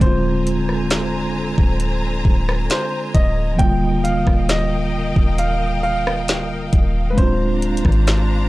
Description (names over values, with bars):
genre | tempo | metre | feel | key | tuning
contemporary R&B | 67 BPM | 4/4 | straight | Eb major | A4 = 440 Hz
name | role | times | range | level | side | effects
clear grand piano | melody | 0.0-8.5 s | Cb5 to G5 | -25 LUFS | right 1 dB | none
mellow tine electric piano | accompaniment | 0.0-8.5 s | D3 to F4 | -22 LUFS | right 1 dB | medium stereo tremolo
clear studio string section | sustained chords | 0.0-8.5 s | D3 to Bb5 | -28 LUFS | left 1 dB | none
soft 808-style bass | bass | 0.0-8.5 s | D1 to Ab1 | -21 LUFS | equal | none
smooth R&B drum kit | drums | 0.0-8.3 s | hi-hat, kick drum, rim click, snare drum | -17 LUFS | equal | none
room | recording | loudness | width
little or no reverb | dry, gritty hardware recording, transformer saturation, cassette tape | -16 LUFS | side -18 dB against mid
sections
0.0-8.5 A section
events
none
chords
0.0 Bb9/D; 3.6 Ebmaj9; 7.2 Bb9/D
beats
| 0.01 0.91 1.80 2.70 | 3.59 4.49 5.38 6.28 | 7.17 8.07